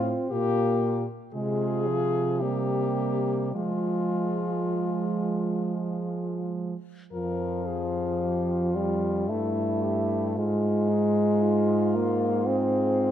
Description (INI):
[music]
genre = classical, lyrical piece for horn quartet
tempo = 50-60 BPM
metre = 3/4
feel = rubato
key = F minor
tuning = A4 = 442 Hz
[part]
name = clear French horn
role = melody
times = 0.0-13.1 s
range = Eb4 to Bb4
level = -32 LUFS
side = left 6 dB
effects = none
[part]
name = warm French horn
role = second line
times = 0.0-13.1 s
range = Ab3 to F4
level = -32 LUFS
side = right 9 dB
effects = none
[part]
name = mellow French horn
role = accompaniment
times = 0.0-13.1 s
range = F3 to C4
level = -27 LUFS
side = left 2 dB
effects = none
[part]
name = mellow French horn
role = bass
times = 0.0-13.1 s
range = F2 to F3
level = -30 LUFS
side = right 3 dB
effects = none
[sound]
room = light reverb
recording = close, detailed microphones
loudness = -24 LUFS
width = side -10 dB against mid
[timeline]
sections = 0.0-7.1 A section; 7.1-13.1 B section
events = none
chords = 0.3 Gm7/Bb; 1.4 Fm/C; 2.4 C5; 3.6 Fm; 7.1 Fmadd9; 9.3 Emadd11/G; 10.4 Fm/Ab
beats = | 0.32 1.35 2.42 | 3.56 4.75 5.96 | 7.13 8.21 9.28 | 10.37 11.43 12.47